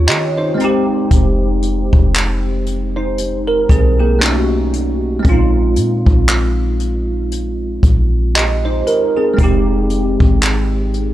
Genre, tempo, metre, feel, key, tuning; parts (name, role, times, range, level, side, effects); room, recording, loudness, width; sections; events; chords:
contemporary R&B; 58 BPM; 4/4; swing 58% on 16ths; F minor; A4 = 441 Hz
bell-like tine electric piano; accompaniment; 0.0-11.1 s; Ab3 to Eb5; -17 LUFS; right 1 dB; ensemble chorus
soft 808-style bass; bass; 0.0-11.1 s; F1 to Eb3; -17 LUFS; equal; transformer saturation
jazz brush drum kit; drums; 0.1-11.1 s; handclaps, hi-hat, kick drum; -14 LUFS; equal
little or no reverb; dry, gritty hardware recording; -12 LUFS; side -14 dB against mid
0.0-11.1 A section
0.0 Eb13; 0.6 Fm9; 4.2 B9; 5.2 Bb9sus4; 9.4 Fm9